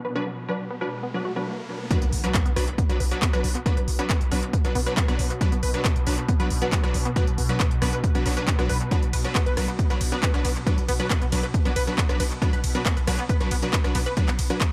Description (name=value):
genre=driving peak-time techno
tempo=137 BPM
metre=4/4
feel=straight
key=B minor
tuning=A4 = 440 Hz
part: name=tight sequenced synth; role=riff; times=0.0-14.5 s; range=B3 to B4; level=-35 LUFS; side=equal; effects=chorus, sidechain pumping, analog delay
part: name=swarming drone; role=drone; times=0.0-14.7 s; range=B2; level=-37 LUFS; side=equal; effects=built-in reverb, phaser, sidechain pumping
part: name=riser and impact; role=sound effects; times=0.0-3.7 s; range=none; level=-37 LUFS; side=equal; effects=none
part: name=rave stab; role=stabs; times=0.2-14.6 s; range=F#3 to B4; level=-32 LUFS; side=equal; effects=chorus, built-in reverb, sidechain pumping, analog delay
part: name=electronic kick drum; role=drums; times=1.9-14.7 s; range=none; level=-26 LUFS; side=equal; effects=overdrive
part: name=techno drum kit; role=drums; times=1.9-14.7 s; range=handclaps, hi-hat, ride cymbal, rim click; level=-33 LUFS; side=equal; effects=analog delay
part: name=growling 808-style bass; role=bass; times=2.0-14.5 s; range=B1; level=-30 LUFS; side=equal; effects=tube saturation, sidechain pumping, low-pass filter
room=light reverb, digital ambience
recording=echo-heavy mix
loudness=-24 LUFS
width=mono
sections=0.0-1.9 A section; 1.9-14.7 B section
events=riser 0.0-1.9; filter sweep on synth arpeggio sound 0.0-1.9; stop 1.5-1.9; drop 1.9-14.7; impact 1.9-3.7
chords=0.0 Bm